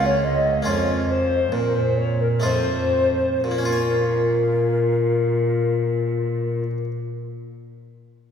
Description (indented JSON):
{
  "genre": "classical, baroque-style sonata movement with continuo",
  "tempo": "58-75 BPM",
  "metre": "3/4",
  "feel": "straight",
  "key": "Bb minor",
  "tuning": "A4 = 442 Hz",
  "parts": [
    { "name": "mellow alto recorder", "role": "melody", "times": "0.0-6.6 s", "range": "F4 to Eb5", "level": "-26 LUFS", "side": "left 5 dB", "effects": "none" },
    { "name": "mellow hollow silver concert flute", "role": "second line", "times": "0.0-6.6 s", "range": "Bb4 to Eb5", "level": "-23 LUFS", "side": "right 1 dB", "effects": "none" },
    { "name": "harpsichord", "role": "accompaniment", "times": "0.0-6.9 s", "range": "Db2 to Db5", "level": "-28 LUFS", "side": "left 1 dB", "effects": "none" },
    { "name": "warm cello", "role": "bass", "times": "0.0-6.6 s", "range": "Db2 to Bb2", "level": "-24 LUFS", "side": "equal", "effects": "none" }
  ],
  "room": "wet church reverb, RT60 2.9 s",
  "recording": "minimal, uncompressed stereo recording",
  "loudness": "-19 LUFS",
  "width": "side -7 dB against mid",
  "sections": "0.0-3.4 A section; 3.4-8.3 B section",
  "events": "slowing down 0.0-3.4",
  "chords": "0.0 Bbm/Db; 0.7 Bbm/F; 2.4 F7; 3.4 Bbm",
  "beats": "| 0.66 1.52 2.44 | 3.44 4.48 5.52 | 6.55"
}